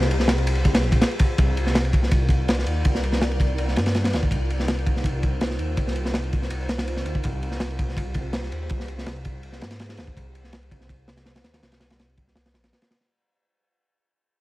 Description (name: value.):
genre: drum and bass, jungle.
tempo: 164 BPM.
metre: 4/4.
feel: straight.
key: C minor.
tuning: A4 = 440 Hz.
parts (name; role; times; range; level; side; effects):
granular cloud pad; sustained chords; 0.0-13.1 s; Eb4 to D5; -33 LUFS; equal; built-in reverb.
detuned saw bass; bass; 0.0-12.7 s; Bb1 to Ab2; -26 LUFS; equal; none.
crunchy breakbeat drum kit; drums; 0.0-13.1 s; kick drum, ride cymbal, snare drum; -23 LUFS; equal; none.
room: small room ambience.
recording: vinyl crackle.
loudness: -21 LUFS.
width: side -18 dB against mid.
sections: 0.0-1.4 A section; 1.4-13.1 B section.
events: drop 0.0-1.4; fade-out 1.4-13.1.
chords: 0.0 Fmadd9/C; 1.4 Cm11; 7.2 Fmadd9/C.